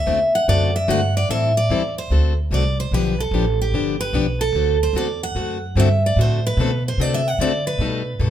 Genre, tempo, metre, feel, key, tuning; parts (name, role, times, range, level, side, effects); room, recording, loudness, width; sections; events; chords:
acoustic string swing (jazz manouche); 148 BPM; 4/4; swing 64% on 8ths; D mixolydian; A4 = 440 Hz
picked steel-string acoustic guitar; melody; 0.0-8.3 s; G4 to F#5; -22 LUFS; right 2 dB
upright bass; bass; 0.0-8.3 s; G1 to D3; -20 LUFS; right 1 dB
picked plugged-in steel-string acoustic guitar; accompaniment; 0.1-8.3 s; B2 to A4; -24 LUFS; left 6 dB
moderate studio reverb, RT60 0.8 s; minimal, uncompressed stereo recording; -17 LUFS; side -11 dB against mid
0.0-8.3 A section
0.0 D7; 1.3 Am7; 2.1 D7; 2.9 G7; 4.5 D7; 7.8 Baug7